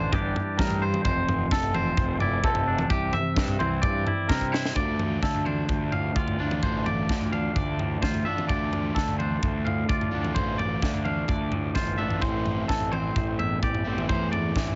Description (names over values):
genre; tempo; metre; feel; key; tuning
math rock and midwest emo; 129 BPM; 4/4; straight; D minor; A4 = 440 Hz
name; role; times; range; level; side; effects
twangy electric guitar; accompaniment; 0.0-14.8 s; D2 to G4; -34 LUFS; equal; none
twangy electric guitar; arpeggios; 0.0-14.8 s; G4 to F5; -33 LUFS; equal; none
fuzz fingered electric bass; bass; 0.0-14.8 s; F1 to C3; -33 LUFS; equal; overdrive
crisp fusion drum kit; drums; 0.1-14.8 s; kick drum, snare drum, toms; -30 LUFS; equal; none
crunchy overdriven guitar; riff; 4.8-14.8 s; A2 to F4; -35 LUFS; equal; none
room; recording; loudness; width
little or no reverb; heavily compressed radio sound, nothing above 7.7 kHz; -26 LUFS; mono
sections
0.0-4.8 A section; 4.8-14.8 B section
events
drum fill 4.3-4.8, 12.0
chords
0.1 Em7b5/G; 1.1 Fmaj7; 2.9 C7; 4.8 Dm7; 12.2 Am7